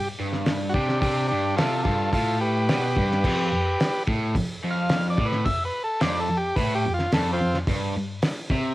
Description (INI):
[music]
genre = garage rock duo or trio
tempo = 108 BPM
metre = 4/4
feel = straight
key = unclear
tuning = A4 = 440 Hz
[part]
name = combo organ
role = melody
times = 0.0-7.6 s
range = C4 to F5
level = -26 LUFS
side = equal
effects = none
[part]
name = crunchy overdriven guitar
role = riff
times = 0.0-8.7 s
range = F2 to C3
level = -25 LUFS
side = equal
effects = cassette tape
[part]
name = cloth-damped thuddy drum kit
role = drums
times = 0.3-8.6 s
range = crash cymbal, hi-hat, kick drum, snare drum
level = -27 LUFS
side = equal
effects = cassette tape
[sound]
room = light reverb, small room ambience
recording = home recording on cassette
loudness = -21 LUFS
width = side -17 dB against mid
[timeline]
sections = 0.0-8.7 A section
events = transistor combo organ solo 0.0-8.7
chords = 0.0 G; 3.2 F5; 7.7 N.C.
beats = 0.47 | 1.02 1.58 2.13 2.69 | 3.25 3.80 4.35 4.91 | 5.46 6.02 6.57 7.12 | 7.68 8.23